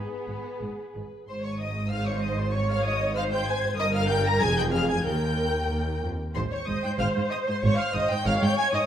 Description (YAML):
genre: quick classical-period movement for string orchestra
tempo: 94 BPM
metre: 2/4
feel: rubato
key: Ab major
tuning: A4 = 440 Hz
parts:
  - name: rich studio violin section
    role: melody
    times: 0.0-8.9 s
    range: B4 to Bb6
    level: -32 LUFS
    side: left 3 dB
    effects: none
  - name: warm studio violin section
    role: second line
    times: 0.0-8.8 s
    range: B3 to Bb5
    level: -31 LUFS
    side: left 1 dB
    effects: none
  - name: dark studio viola section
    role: accompaniment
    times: 0.0-8.9 s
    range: G#4 to Db5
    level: -30 LUFS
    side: equal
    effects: none
  - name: warm chamber double bass section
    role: bass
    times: 0.0-8.3 s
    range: F1 to Eb2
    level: -30 LUFS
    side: right 1 dB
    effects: none
  - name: warm studio cello section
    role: bass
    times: 0.0-8.8 s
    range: Eb2 to G#2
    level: -29 LUFS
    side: right 1 dB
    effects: none
room: moderate scoring stage reverb, RT60 1.5 s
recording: none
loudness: -24 LUFS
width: side -9 dB against mid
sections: 0.0-1.3 A section; 1.3-8.9 A section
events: none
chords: 0.0 G#m; 1.3 Ab; 3.8 Gm7; 4.4 Fm; 5.1 Eb; 6.4 Ab